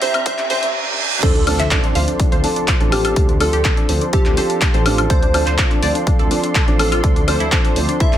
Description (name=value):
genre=progressive house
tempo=124 BPM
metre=4/4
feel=straight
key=D minor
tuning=A4 = 438 Hz
part: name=plucky unison lead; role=melody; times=0.0-8.2 s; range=G4 to E5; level=-24 LUFS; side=equal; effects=sidechain pumping, tape echo
part: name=warm analog pad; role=sustained chords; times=0.0-8.2 s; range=F4 to C6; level=-27 LUFS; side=equal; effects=chorus, sidechain pumping
part: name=tight sequenced synth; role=arpeggios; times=0.0-8.2 s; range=C4 to F5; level=-25 LUFS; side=left 1 dB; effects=chorus, sidechain pumping, digital delay
part: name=dark grand piano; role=stabs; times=0.0-8.2 s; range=E3 to C5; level=-23 LUFS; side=right 2 dB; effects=sidechain pumping, digital delay
part: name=dark detuned saw bass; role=bass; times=0.0-8.2 s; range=A1 to D2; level=-21 LUFS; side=equal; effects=sidechain pumping
part: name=big-room dance drum kit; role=drums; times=0.0-8.2 s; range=crash cymbal, handclaps, hi-hat, woodblock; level=-22 LUFS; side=left 2 dB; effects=none
part: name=riser, reverse cymbal and impact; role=sound effects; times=0.0-3.2 s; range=none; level=-24 LUFS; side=right 2 dB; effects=none
part: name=electronic kick drum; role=drums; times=0.3-8.1 s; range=none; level=-16 LUFS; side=equal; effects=none
part: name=soft synth bell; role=second line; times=1.2-8.2 s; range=G4 to E5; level=-29 LUFS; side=right 1 dB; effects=none
room=light reverb, digital ambience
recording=high-pass filter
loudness=-14 LUFS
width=side -11 dB against mid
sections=0.0-1.2 A section; 1.2-8.2 B section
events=build-up 0.0-1.2; riser 0.0-1.2; filter sweep on analog synth pad 0.0-1.2; filter sweep 0.0-1.2; reverse cymbal 0.3-1.2; drop 1.2-8.2; impact 1.2-3.2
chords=0.0 Cadd9; 1.2 Dm7